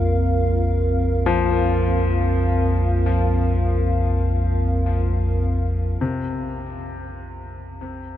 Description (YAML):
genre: dark ambient drone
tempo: free time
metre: none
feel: none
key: unclear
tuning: A4 = 439 Hz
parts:
  - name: dark analog pad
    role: sustained chords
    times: 0.0-6.0 s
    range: C4 to F5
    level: -25 LUFS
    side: right 1 dB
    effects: chorus
  - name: deep rumbling drone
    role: drone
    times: 0.0-8.2 s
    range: Bb1 to F2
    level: -21 LUFS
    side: equal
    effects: built-in reverb, wide subtle chorus
  - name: bright concert grand piano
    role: arpeggios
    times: 1.3-8.2 s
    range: C3 to F3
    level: -27 LUFS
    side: left 5 dB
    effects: tape echo
room: moderate huge ambient reverb, RT60 7.5 s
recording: none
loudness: -18 LUFS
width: side -12 dB against mid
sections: 0.0-6.0 A section; 6.0-8.2 B section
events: filter sweep on synth drone 6.0-8.2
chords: 0.0 Bbsus2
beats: free time